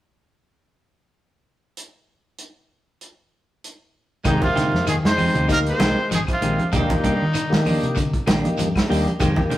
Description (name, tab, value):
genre	afrobeat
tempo	97 BPM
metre	4/4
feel	swing 55% on 16ths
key	F dorian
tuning	A4 = 440 Hz
part	warm soul drum kit	drums	1.8-9.6 s	hi-hat, kick drum, snare drum	-24 LUFS	right 1 dB	none
part	tonewheel organ	accompaniment	4.2-9.6 s	Eb3 to G4	-27 LUFS	left 2 dB	slow rotary speaker
part	clean electric guitar	stabs	4.2-9.6 s	Eb3 to G4	-27 LUFS	right 2 dB	none
part	claves	percussion	4.2-9.4 s	none	-39 LUFS	left 4 dB	none
part	shekere	percussion	4.2-9.6 s	none	-35 LUFS	right 3 dB	none
part	clear trumpet	melody	4.3-7.9 s	Eb4 to C5	-24 LUFS	right 1 dB	analog delay
part	edgy tenor saxophone	second line	4.3-7.9 s	Ab2 to Ab3	-32 LUFS	right 1 dB	none
part	electric guitar at the edge of break-up	arpeggios	4.3-9.6 s	D3 to Eb4	-26 LUFS	left 3 dB	none
part	vintage muted fingered electric bass	bass	4.3-9.6 s	F1 to Eb3	-26 LUFS	equal	none
part	congas	percussion	4.3-9.6 s	none	-26 LUFS	equal	none
room	moderate stone room reverb, RT60 1.3 s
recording	rough rehearsal-room recording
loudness	-18 LUFS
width	side -14 dB against mid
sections	1.8-4.2 A section; 4.2-9.6 B section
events	none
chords	1.8 N.C.; 4.2 Fm9; 6.7 Ebmaj7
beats	| 1.77 2.39 3.01 3.63 | 4.25 4.87 5.49 6.11 | 6.73 7.35 7.97 8.59 | 9.21